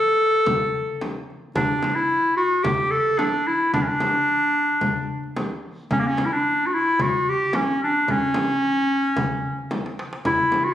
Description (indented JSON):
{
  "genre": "Turkish makam ensemble",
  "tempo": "110 BPM",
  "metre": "4/4",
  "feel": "straight",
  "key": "unclear",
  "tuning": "A4 = 440 Hz",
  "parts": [
    { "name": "bright clarinet", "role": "melody", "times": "0.0-10.7 s", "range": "Bb3 to A4", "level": "-20 LUFS", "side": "equal", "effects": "none" },
    { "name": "darbuka", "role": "percussion", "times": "0.1-10.7 s", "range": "none", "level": "-32 LUFS", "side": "left 1 dB", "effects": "none" },
    { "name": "frame drum", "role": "percussion", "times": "0.5-10.7 s", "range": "none", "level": "-28 LUFS", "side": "left 1 dB", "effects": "none" }
  ],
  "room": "moderate recital hall reverb, RT60 1.4 s",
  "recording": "recorded on a phone in the room, studio reverb, compression",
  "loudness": "-19 LUFS",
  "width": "side -11 dB against mid",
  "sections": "0.0-1.6 A section; 1.6-10.7 B section",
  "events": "drum fill 9.7-10.3",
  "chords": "none"
}